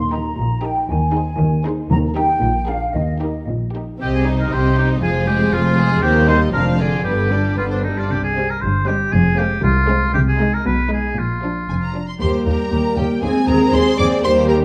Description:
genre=quick classical-period movement for symphony orchestra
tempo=117 BPM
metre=2/4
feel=straight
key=Eb major, C minor from 4.0 s, Eb major from 10.1 s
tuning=A4 = 440 Hz
part: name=mellow flute section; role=second line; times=0.0-3.5 s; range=Eb5 to C6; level=-24 LUFS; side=equal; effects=none
part: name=rich symphonic double bass section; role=bass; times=0.0-14.6 s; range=F1 to Eb2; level=-23 LUFS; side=equal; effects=none
part: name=warm chamber cello section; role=bass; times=0.0-14.6 s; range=C2 to Eb3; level=-25 LUFS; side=equal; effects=none
part: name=timpani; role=percussion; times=0.0-2.4 s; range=Eb3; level=-27 LUFS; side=equal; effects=none
part: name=rich chamber violin section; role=melody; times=0.1-14.6 s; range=Ab4 to D6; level=-31 LUFS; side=equal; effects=none
part: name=rich chamber violin section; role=second line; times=0.1-14.6 s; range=B3 to D5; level=-27 LUFS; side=equal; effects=none
part: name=rich chamber viola section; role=accompaniment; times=0.1-14.6 s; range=D3 to Ab4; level=-25 LUFS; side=equal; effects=none
part: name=clear oboe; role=second line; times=4.0-12.0 s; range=D4 to C5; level=-23 LUFS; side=equal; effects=none
part: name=warm French horn section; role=sustained chords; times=12.2-14.6 s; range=G3 to C4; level=-25 LUFS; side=equal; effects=none
room=moderate recital hall reverb, RT60 1.5 s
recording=dark, warm production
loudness=-18 LUFS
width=mono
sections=0.0-4.0 A section; 4.0-12.2 B section; 12.2-14.6 A section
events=none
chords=0.0 Eb; 0.9 Ab/Eb; 2.4 Bb7; 2.9 Eb; 4.0 Cm; 5.0 Fm; 6.0 Cm/Eb; 6.5 Ddim/F; 7.1 G; 8.1 Cm; 9.1 Fm; 10.1 Ab/C; 10.7 Abm/Cb; 11.2 Bb; 12.2 Eb; 13.2 Ab/Eb

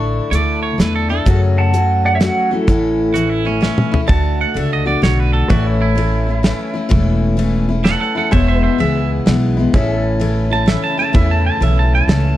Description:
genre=honky-tonk and classic country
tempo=127 BPM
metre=3/4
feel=swing 66% on 8ths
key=A major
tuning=A4 = 442 Hz
part: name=pedal steel guitar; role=melody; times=0.0-3.6 s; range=E4 to C#6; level=-19 LUFS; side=right 2 dB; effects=none
part: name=picked steel-string acoustic guitar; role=accompaniment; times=0.0-12.4 s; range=E2 to F#4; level=-19 LUFS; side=left 4 dB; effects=none
part: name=upright bass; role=bass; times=0.0-12.4 s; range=E1 to F#2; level=-17 LUFS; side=equal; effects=none
part: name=twangy electric guitar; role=second line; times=0.3-12.4 s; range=C#4 to A5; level=-21 LUFS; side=right 5 dB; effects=tape echo
part: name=damped 70s drum kit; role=drums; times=0.3-12.2 s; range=hi-hat, kick drum, ride cymbal, snare drum, toms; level=-16 LUFS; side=equal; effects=none
part: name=pedal steel guitar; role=sustained chords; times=4.1-12.4 s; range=G#4 to F#5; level=-26 LUFS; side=equal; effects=none
part: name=dark studio string section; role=sustained chords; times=9.7-12.4 s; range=C#3 to E4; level=-28 LUFS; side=equal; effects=none
room=little or no reverb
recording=dark, warm production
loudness=-13 LUFS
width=side -14 dB against mid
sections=0.0-4.1 A section; 4.1-12.4 B section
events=drum fill 3.6-4.1; clean electric guitar solo 4.1-12.4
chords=0.0 Dsus2; 1.3 F#m; 2.7 A; 4.1 D; 5.5 A; 8.3 E; 9.7 A

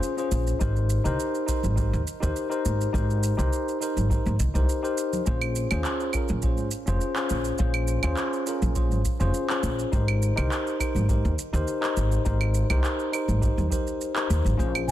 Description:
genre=sunset chillout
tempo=103 BPM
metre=4/4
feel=straight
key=unclear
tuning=A4 = 440 Hz
part: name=tine electric piano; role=accompaniment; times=0.0-14.9 s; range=Db4 to C5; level=-28 LUFS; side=moving between left 5 dB and right 2 dB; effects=auto-pan, ping-pong delay
part: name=electronic shaker, claves and handclaps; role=drums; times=0.0-14.9 s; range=none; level=-32 LUFS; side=right 2 dB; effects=overdrive
part: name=upright bass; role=bass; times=0.3-14.9 s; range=F1 to Eb2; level=-25 LUFS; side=equal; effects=none
part: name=electronic kick drum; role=drums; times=0.6-14.7 s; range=none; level=-28 LUFS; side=equal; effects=none
part: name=congas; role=percussion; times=1.6-14.9 s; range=none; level=-36 LUFS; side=right 1 dB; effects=none
room=light reverb, small room ambience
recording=dense, heavily limited modern master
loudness=-23 LUFS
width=side -13 dB against mid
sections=0.0-14.9 A section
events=none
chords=0.0 Bbm9; 0.6 Abmaj9; 5.3 Bbm9; 9.9 Abmaj9

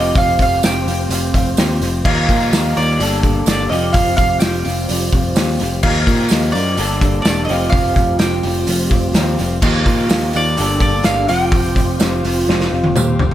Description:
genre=folk rock and heartland rock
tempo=127 BPM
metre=4/4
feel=straight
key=unclear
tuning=A4 = 440 Hz
part: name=mandolin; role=melody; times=0.0-12.9 s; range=D5 to G5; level=-20 LUFS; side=right 2 dB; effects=analog delay
part: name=clear baby grand piano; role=accompaniment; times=0.0-13.3 s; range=F4 to G5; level=-30 LUFS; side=right 4 dB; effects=none
part: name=picked steel-string acoustic guitar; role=accompaniment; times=0.0-13.3 s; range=G2 to A4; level=-24 LUFS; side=left 4 dB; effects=analog delay
part: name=tonewheel organ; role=sustained chords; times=0.0-13.3 s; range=G3 to C5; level=-32 LUFS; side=left 1 dB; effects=none
part: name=electric guitar through a small old amp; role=riff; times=0.0-13.2 s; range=G2 to Bb4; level=-23 LUFS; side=right 2 dB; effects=ensemble chorus, analog delay
part: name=picked electric bass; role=bass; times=0.0-13.3 s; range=E1 to Bb2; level=-19 LUFS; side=equal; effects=none
part: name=loose indie drum kit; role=drums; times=0.2-13.3 s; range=crash cymbal, hi-hat, kick drum, snare drum, toms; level=-17 LUFS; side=equal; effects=analog delay
part: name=tambourine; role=percussion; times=0.6-13.1 s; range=none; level=-30 LUFS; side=right 7 dB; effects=analog delay
room=light reverb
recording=echo-heavy mix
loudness=-13 LUFS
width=side -12 dB against mid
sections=0.0-13.3 A section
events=drum fill 12.5-13.3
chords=0.0 Fsus2; 2.1 Ebadd9; 3.0 Gmadd9; 3.7 Fsus2; 5.8 Ebadd9; 6.8 Gmadd9; 7.5 Fsus2; 9.6 Ebadd9; 10.6 Gmadd9; 11.3 Fsus2

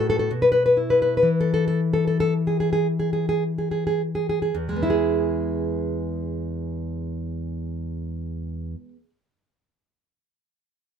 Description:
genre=romantic piece for solo classical guitar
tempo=50-68 BPM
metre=3/4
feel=rubato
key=E major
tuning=A4 = 439 Hz
part: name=nylon-string guitar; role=solo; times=0.0-9.1 s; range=E2 to B4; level=-21 LUFS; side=left 1 dB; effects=none
room=little or no reverb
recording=close, detailed microphones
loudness=-21 LUFS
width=side -8 dB against mid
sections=0.0-4.6 A section; 4.6-11.0 B section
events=slowing down 0.0-4.6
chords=0.3 Bsus4; 1.3 N.C.; 4.6 E

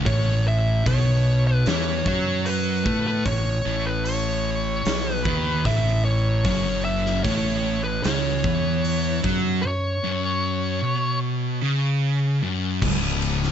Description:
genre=stoner and doom metal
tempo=75 BPM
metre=4/4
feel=straight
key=unclear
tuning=A4 = 441 Hz
part: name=thick fuzz guitar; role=riff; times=0.0-13.5 s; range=C#2 to A3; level=-26 LUFS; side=left 7 dB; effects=distortion
part: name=thick fuzz guitar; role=riff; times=0.0-12.8 s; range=F#2 to A3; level=-26 LUFS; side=right 7 dB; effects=distortion
part: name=fuzz fingered electric bass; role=bass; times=0.0-13.5 s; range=C#1 to A2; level=-27 LUFS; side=equal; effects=overdrive
part: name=fuzz lead guitar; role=melody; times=0.1-11.2 s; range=B4 to E5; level=-27 LUFS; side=equal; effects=distortion, tape echo
part: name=big rock drum kit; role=drums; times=0.1-13.5 s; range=crash cymbal, hi-hat, kick drum, ride cymbal, snare drum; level=-29 LUFS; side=equal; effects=none
room=light reverb, small room ambience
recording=dark, warm production, nothing above 7.9 kHz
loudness=-20 LUFS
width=side -9 dB against mid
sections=0.0-12.8 A section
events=none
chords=0.1 A5; 6.5 F#5; 12.8 N.C.

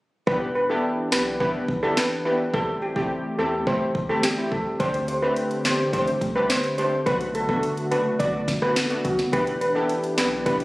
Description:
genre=dancehall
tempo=106 BPM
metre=4/4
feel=straight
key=E minor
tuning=A4 = 440 Hz
part: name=steel pan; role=melody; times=0.3-10.6 s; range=F#4 to D5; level=-24 LUFS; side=equal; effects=none
part: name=synth brass stab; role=accompaniment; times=0.3-10.6 s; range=A3 to G4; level=-28 LUFS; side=equal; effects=chorus, sidechain pumping
part: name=warm analog pad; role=sustained chords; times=0.3-10.6 s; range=D3 to G4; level=-30 LUFS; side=equal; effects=chorus, sidechain pumping
part: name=round analog bass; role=bass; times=0.3-10.6 s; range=E1 to E2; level=-35 LUFS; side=equal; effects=none
part: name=afro-pop drum kit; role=drums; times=0.3-10.6 s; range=handclaps, hi-hat, kick drum, rim click, snare drum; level=-27 LUFS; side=equal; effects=none
room=light reverb, digital ambience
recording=recorded on a phone in the room, studio reverb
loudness=-21 LUFS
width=side -20 dB against mid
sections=0.3-10.6 A section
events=none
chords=0.3 Em7; 2.5 Am7; 4.8 D7sus4; 7.1 Bm7; 9.3 Em7

